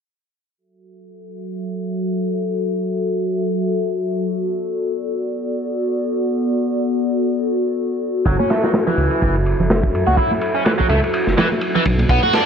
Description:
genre	breakbeat, breaks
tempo	125 BPM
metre	4/4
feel	swing 56% on 16ths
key	F# minor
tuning	A4 = 439 Hz
part	warbly tape-like pad	sustained chords	1.3-12.5 s	F#3 to E5	-20 LUFS	left 1 dB	chorus, built-in reverb, phaser, sidechain pumping
part	biting overdriven guitar	riff	8.3-12.5 s	E3 to F#4	-20 LUFS	right 1 dB	tube saturation, vintage 12-bit sampler grit, tape echo
part	dark detuned saw bass	bass	8.3-12.2 s	F#1 to F#2	-19 LUFS	equal	none
part	crunchy breakbeat drum kit	drums	8.3-12.5 s	kick drum, ride cymbal, snare drum	-20 LUFS	equal	none
part	congas	percussion	8.4-12.3 s	none	-24 LUFS	right 4 dB	none
room	moderate lush hall reverb, RT60 1.9 s, studio ambience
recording	dry, gritty hardware recording, low-pass filter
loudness	-17 LUFS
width	side -7 dB against mid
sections	0.6-12.5 A section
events	filter sweep 0.6-12.5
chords	0.6 F#m7; 4.2 Bm7; 8.3 F#m7; 11.9 Bm7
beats	| 0.58 1.06 1.54 2.02 | 2.50 2.98 3.46 3.94 | 4.42 4.90 5.38 5.86 | 6.34 6.82 7.30 7.78 | 8.26 8.74 9.22 9.70 | 10.18 10.66 11.14 11.62 | 12.10

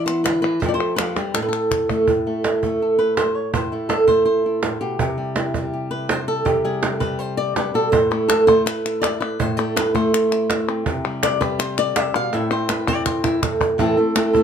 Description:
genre	flamenco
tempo	164 BPM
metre	4/4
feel	straight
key	A minor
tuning	A4 = 442 Hz
part	flamenco guitar	melody	0.0-14.4 s	A2 to F5	-18 LUFS	equal	none
part	palmas hand claps	percussion	0.1-2.1, 8.1-14.3 s	none	-26 LUFS	left 7 dB	none
part	cajon	percussion	0.3-14.4 s	none	-24 LUFS	right 4 dB	none
room	moderate studio reverb, RT60 0.6 s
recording	none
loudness	-18 LUFS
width	side -8 dB against mid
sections	0.0-2.1 A section; 2.1-13.8 B section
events	drum fill 1.2-2.1, 12.3-13.8; nylon-string guitar solo 2.1-13.8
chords	0.0 E5; 0.6 F; 1.3 Am; 5.0 C; 7.9 Am; 10.9 C; 12.3 Am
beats	0.25 | 0.62 0.98 1.35 1.71 | 2.08 2.44 2.81 3.17 | 3.54 3.90 4.27 4.64 | 5.00 5.37 5.74 6.10 | 6.47 6.83 7.20 7.57 | 7.93 8.30 8.66 9.03 | 9.40 9.76 10.13 10.49 | 10.86 11.23 11.59 11.96 | 12.32 12.69 13.06 13.42 | 13.79 14.16

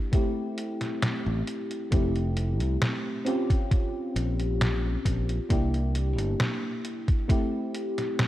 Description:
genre	vaporwave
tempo	67 BPM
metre	4/4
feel	straight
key	unclear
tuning	A4 = 439 Hz
part	mellow FM electric piano	accompaniment	0.0-8.3 s	A3 to G4	-30 LUFS	left 1 dB	wide subtle chorus, tape echo
part	detuned 8-bit digital drum machine	drums	0.1-8.3 s	hi-hat, snare drum	-30 LUFS	equal	overdrive
part	electronic kick drum	drums	0.1-7.5 s	none	-24 LUFS	equal	overdrive
part	modern bright fingered electric bass	bass	1.3-6.3 s	F1 to C2	-27 LUFS	equal	tube saturation
room	light reverb, digital ambience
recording	cassette tape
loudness	-25 LUFS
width	side -14 dB against mid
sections	0.0-8.3 A section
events	none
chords	0.1 Am7; 1.9 Fmaj7; 3.3 Bbm6; 5.5 C7; 7.3 Am7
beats	0.13 1.03 | 1.92 2.82 3.71 4.61 | 5.50 6.40 7.29 8.19

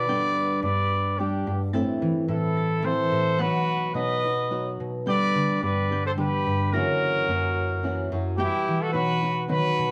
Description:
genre	mexican folk, mariachi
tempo	109 BPM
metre	3/4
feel	straight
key	unclear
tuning	A4 = 439 Hz
part	mellow trumpet	melody	0.0-9.9 s	G4 to D#5	-28 LUFS	equal	none
part	mellow trumpet	second line	0.0-9.9 s	D4 to B4	-35 LUFS	equal	none
part	flamenco guitar	accompaniment	0.0-9.9 s	F#2 to A4	-32 LUFS	equal	none
part	concert harp	arpeggios	0.0-9.9 s	F#2 to A#6	-30 LUFS	equal	none
room	moderate studio reverb, RT60 0.6 s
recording	none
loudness	-25 LUFS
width	mono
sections	0.0-9.9 A section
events	none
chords	0.1 G; 1.7 Am; 3.4 B; 5.1 G; 6.7 F#7; 8.4 Em/B; 8.9 B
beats	| 0.08 0.64 1.19 | 1.74 2.29 2.84 | 3.39 3.94 4.50 | 5.06 5.62 6.18 | 6.73 7.28 7.83 | 8.39 8.94 9.49

